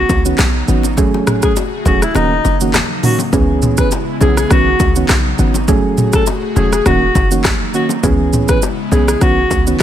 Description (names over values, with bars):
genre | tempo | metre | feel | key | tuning
afrobeats | 102 BPM | 4/4 | swing 55% on 16ths | C# minor | A4 = 440 Hz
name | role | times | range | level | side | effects
breathy alto saxophone | melody | 0.0-9.6 s | D#4 to B4 | -18 LUFS | left 1 dB | digital delay
airy breathy pad | sustained chords | 0.0-9.8 s | C#3 to G#4 | -23 LUFS | equal | chorus
short 808-style bass | bass | 0.0-9.8 s | D#1 to C#2 | -16 LUFS | equal | none
afro-pop drum kit | drums | 0.1-9.8 s | handclaps, hi-hat, kick drum, rim click, shaker, toms | -16 LUFS | equal | none
bongos and congas | percussion | 0.1-9.8 s | none | -24 LUFS | left 6 dB | none
soft electric-piano-like synth keys | accompaniment | 0.3-9.8 s | D#3 to G#4 | -18 LUFS | right 3 dB | chorus
room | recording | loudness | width
little or no reverb | none | -11 LUFS | side -10 dB against mid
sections
0.0-9.8 A section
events
kick muted 2.2-3.3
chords
0.0 Badd9; 1.0 F#madd9; 2.2 D#m7; 3.3 C#m7; 4.5 Badd9; 5.7 F#madd9; 6.9 D#m7; 8.0 C#m7; 9.2 Badd9